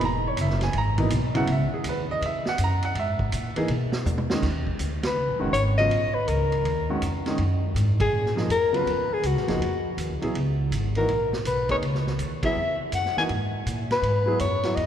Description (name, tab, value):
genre	modal jazz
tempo	162 BPM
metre	4/4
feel	swing 65% on 8ths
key	Eb phrygian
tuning	A4 = 440 Hz
part	clear grand piano	accompaniment	0.0-14.8 s	Cb3 to Bb5	-29 LUFS	right 1 dB	none
part	upright bass	bass	0.0-14.9 s	Fb1 to Cb3	-26 LUFS	equal	none
part	vintage drum kit	drums	0.0-14.9 s	crash cymbal, hi-hat, kick drum, ride cymbal, snare drum, toms	-33 LUFS	right 2 dB	none
part	mellow soprano saxophone	melody	5.1-14.9 s	Gb4 to Ab5	-25 LUFS	left 2 dB	none
room	wet cathedral reverb, RT60 4.3 s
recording	recorded in a church or concert hall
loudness	-22 LUFS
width	side -9 dB against mid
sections	0.0-4.4 A section; 4.4-14.9 B section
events	drum fill 4.1-4.4; band accent 5.0, 7.9, 12.4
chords	0.0 Dbm9; 4.4 Ebm9; 10.3 Dbm9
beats	| 0.01 0.38 0.75 1.12 | 1.48 1.85 2.22 2.59 | 2.96 3.32 3.69 4.06 | 4.43 4.80 5.17 5.54 | 5.91 6.28 6.65 7.01 | 7.38 7.75 8.12 8.49 | 8.86 9.23 9.60 9.97 | 10.34 10.71 11.08 11.45 | 11.81 12.18 12.55 12.92 | 13.29 13.66 14.03 14.40 | 14.77